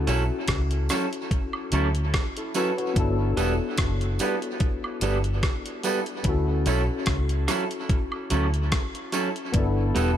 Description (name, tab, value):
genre	lovers rock reggae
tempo	73 BPM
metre	4/4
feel	swing 55% on 16ths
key	D major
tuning	A4 = 438 Hz
part	barky tine electric piano	accompaniment	0.0-10.2 s	B3 to C#5	-30 LUFS	left 4 dB	overdrive, ensemble chorus
part	vintage muted fingered electric bass	bass	0.0-10.2 s	E1 to D2	-25 LUFS	equal	none
part	electric guitar through a small old amp	stabs	0.1-10.1 s	F#3 to A4	-28 LUFS	right 3 dB	dub echo
part	crisp 8-bit digital drum machine	drums	0.1-10.2 s	hi-hat, kick drum, rim click	-27 LUFS	equal	none
part	tambourine and woodblock	percussion	0.1-10.2 s	none	-38 LUFS	right 7 dB	dub echo
room	light reverb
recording	none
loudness	-23 LUFS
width	side -10 dB against mid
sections	0.0-10.2 A section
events	none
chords	0.0 Dmaj9; 3.0 G69; 6.2 Dmaj9; 9.5 G69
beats	0.48 1.31 2.13 | 2.95 3.78 4.60 5.43 | 6.25 7.07 7.90 8.72 | 9.54